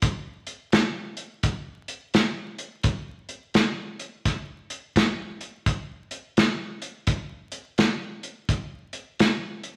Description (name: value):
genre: blues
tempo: 85 BPM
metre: 4/4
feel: swing 63% on 8ths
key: none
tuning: none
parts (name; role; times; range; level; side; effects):
- warm soul drum kit; drums; 0.0-9.8 s; hi-hat, kick drum, snare drum; -25 LUFS; equal; none
room: wet large studio reverb, RT60 1.0 s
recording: vinyl crackle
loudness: -26 LUFS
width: mono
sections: 0.0-9.8 A section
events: none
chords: none